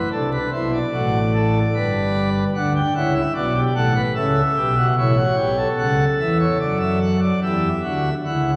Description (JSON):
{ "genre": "classical, baroque-style 3-part fugue for pipe organ", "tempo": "74 BPM", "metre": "3/4", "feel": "straight", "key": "unclear", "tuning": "A4 = 441 Hz", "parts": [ { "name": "pipe organ, principal chorus", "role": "solo", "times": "0.0-8.6 s", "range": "G1 to G5", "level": "-20 LUFS", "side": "equal", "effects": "none" } ], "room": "wet church reverb, RT60 2.7 s", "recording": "vinyl crackle", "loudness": "-20 LUFS", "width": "mono", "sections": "0.0-7.4 A section; 7.4-8.6 B section", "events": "none", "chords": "0.1 D7; 1.7 G; 2.6 D; 4.2 A/C#; 5.0 A7; 6.6 D/F#; 7.4 C#dim", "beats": "| 0.12 0.94 1.75 | 2.55 3.36 4.17 | 4.98 5.79 6.61 | 7.43 8.26" }